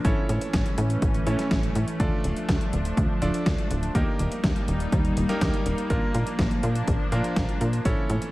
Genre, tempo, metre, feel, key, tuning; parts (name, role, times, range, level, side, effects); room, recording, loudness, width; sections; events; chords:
italo disco; 123 BPM; 4/4; straight; Bb major; A4 = 440 Hz
lush unison pad; sustained chords; 0.0-8.3 s; E3 to Eb4; -30 LUFS; equal; chorus, vintage 12-bit sampler grit
bright electric grand piano; stabs; 0.0-8.3 s; Bb3 to D5; -32 LUFS; right 1 dB; digital delay
tight sequencer bass; bass; 0.0-8.2 s; D1 to Bb2; -27 LUFS; equal; tube saturation
clean 12-bit digital drum machine; drums; 0.0-8.3 s; hi-hat, snare drum; -31 LUFS; equal; overdrive, gated reverb
electronic kick drum; drums; 0.0-8.0 s; -26 LUFS; equal; overdrive
light reverb, digital ambience; vinyl crackle; -22 LUFS; side -18 dB against mid
0.0-8.3 A section
0.0 A; 2.0 Dm; 4.0 Eb; 5.9 Bb